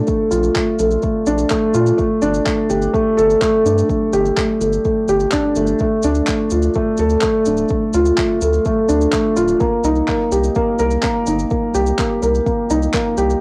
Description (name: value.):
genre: piano and strings electronica.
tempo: 126 BPM.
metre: 4/4.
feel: straight.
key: C dorian.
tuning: A4 = 440 Hz.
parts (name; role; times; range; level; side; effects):
felt-muted upright piano; riff; 0.0-13.4 s; A3 to Bb4; -18 LUFS; equal; cassette tape, analog delay.
electronic kick drum; drums; 0.1-13.0 s; none; -26 LUFS; equal; cassette tape.
electronic shaker and handclaps; drums; 0.1-13.4 s; none; -29 LUFS; equal; cassette tape.
round analog bass; bass; 0.3-13.4 s; D1 to Bb2; -23 LUFS; equal; tube saturation, sidechain pumping.
room: wet small room ambience, RT60 0.5 s.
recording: home recording on cassette.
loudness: -17 LUFS.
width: mono.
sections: 0.0-13.4 A section.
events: none.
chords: 0.0 Bbmaj7; 2.0 Gsus2; 5.8 Dm; 9.6 Cm7.